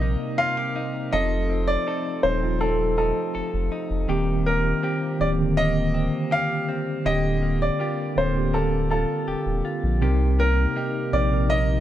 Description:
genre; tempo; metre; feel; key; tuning
contemporary R&B; 81 BPM; 4/4; straight; C dorian; A4 = 442 Hz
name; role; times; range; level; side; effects
warm baby grand piano; melody; 0.0-11.8 s; A4 to F5; -25 LUFS; equal; tape echo
mellow tine electric piano; accompaniment; 0.0-11.8 s; C3 to C5; -26 LUFS; right 1 dB; medium stereo tremolo
dark French horn section; sustained chords; 0.0-11.8 s; C3 to Bb4; -35 LUFS; equal; none
direct-recorded clean electric guitar; arpeggios; 0.0-11.8 s; C3 to A4; -32 LUFS; left 3 dB; spring reverb
saturated sub bass; bass; 0.0-11.8 s; D1 to C2; -24 LUFS; equal; none
room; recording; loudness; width
light reverb; none; -21 LUFS; side -12 dB against mid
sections
0.0-11.8 A section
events
none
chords
0.0 Cm7; 1.1 F7; 4.1 Eb6; 7.1 Bb6/D; 10.0 Cm7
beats
0.39 | 1.13 1.87 2.61 3.35 | 4.09 4.83 5.57 6.32 | 7.05 7.80 8.54 9.28 | 10.02 10.76 11.50

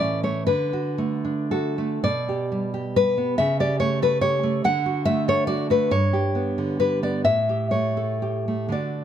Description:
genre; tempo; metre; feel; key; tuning
romantic piece for solo classical guitar; 37-49 BPM (dotted quarters); 6/8; rubato; D major; A4 = 440 Hz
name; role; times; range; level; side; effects
nylon-string guitar; solo; 0.0-9.0 s; G2 to F#5; -20 LUFS; equal; none
room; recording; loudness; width
light reverb; close, detailed microphones; -20 LUFS; side -9 dB against mid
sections
0.0-9.0 A section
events
none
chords
0.5 D; 2.0 G/B; 3.4 A7/C#; 4.6 D; 5.9 G; 7.3 A7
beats
| 0.48 2.03 | 3.40 4.64 | 5.93 7.26 | 8.73

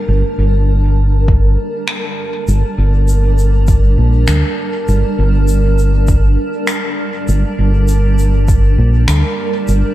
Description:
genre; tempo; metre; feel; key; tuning
ambient dub; 100 BPM; 4/4; straight; G minor; A4 = 439 Hz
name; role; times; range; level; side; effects
granular cloud pad; sustained chords; 0.0-9.9 s; G3 to A5; -19 LUFS; right 1 dB; built-in reverb
fingered electric bass; bass; 0.1-9.8 s; G1 to D2; -11 LUFS; equal; none
electronic kick drum; drums; 1.3-8.6 s; none; -13 LUFS; equal; small room ambience
finger snaps and shaker; drums; 1.9-9.8 s; none; -23 LUFS; left 2 dB; small room ambience, dub echo
room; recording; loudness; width
small room ambience; none; -11 LUFS; side -15 dB against mid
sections
0.0-9.9 A section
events
none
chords
0.0 Gm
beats
| 0.08 0.68 1.28 1.88 | 2.48 3.08 3.68 4.28 | 4.88 5.48 6.08 6.68 | 7.28 7.88 8.48 9.08 | 9.68

